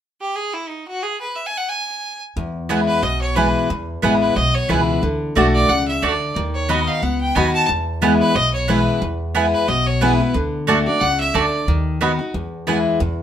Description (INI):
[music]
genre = bluegrass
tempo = 180 BPM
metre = 4/4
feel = swing 56% on 8ths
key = E major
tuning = A4 = 441 Hz
[part]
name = clear fiddle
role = melody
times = 0.2-11.7 s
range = D#4 to A5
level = -21 LUFS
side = equal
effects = none
[part]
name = picked steel-string acoustic guitar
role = accompaniment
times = 2.4-13.2 s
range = E2 to F#4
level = -20 LUFS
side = left 2 dB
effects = none
[part]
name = upright bass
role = bass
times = 2.4-13.2 s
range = A1 to E2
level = -23 LUFS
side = equal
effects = none
[part]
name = mandolin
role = stabs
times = 2.7-12.8 s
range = A3 to B5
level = -20 LUFS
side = right 6 dB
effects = none
[sound]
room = light reverb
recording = minimal, uncompressed stereo recording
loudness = -16 LUFS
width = side -9 dB against mid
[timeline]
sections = 0.0-2.4 A section; 2.4-13.0 B section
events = none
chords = 0.0 N.C.; 2.4 E; 5.0 D; 6.4 B/D#; 7.7 E; 10.3 D; 11.7 B/D#; 12.3 E